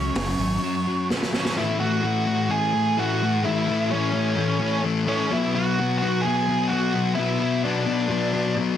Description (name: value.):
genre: rock, shoegaze and dream pop.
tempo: 128 BPM.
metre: 4/4.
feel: straight.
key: A major.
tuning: A4 = 440 Hz.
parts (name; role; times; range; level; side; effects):
octave-fuzz lead guitar; melody; 0.0-8.5 s; C#4 to C#5; -26 LUFS; right 2 dB; distortion, slapback echo.
twangy electric guitar; arpeggios; 0.0-1.6 s; F#3 to C#4; -39 LUFS; right 6 dB; none.
biting overdriven guitar; riff; 0.0-1.6 s; F#3 to F#4; -34 LUFS; right 11 dB; reverse reverb.
thick fuzz guitar; riff; 0.0-8.8 s; A2 to A4; -23 LUFS; left 3 dB; distortion, wide subtle chorus.
growling picked electric bass; bass; 0.0-0.6 s; F#1 to G#1; -28 LUFS; right 1 dB; overdrive.
raw garage drum kit; drums; 0.2-1.6 s; hi-hat, snare drum; -28 LUFS; right 1 dB; none.
room: light reverb, small room ambience.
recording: dense, heavily limited modern master.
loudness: -21 LUFS.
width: side -10 dB against mid.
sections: 0.0-1.6 A section; 1.6-8.8 B section.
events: drum fill 1.1-1.6.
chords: 0.0 F#m; 1.6 A6; 5.3 Bm.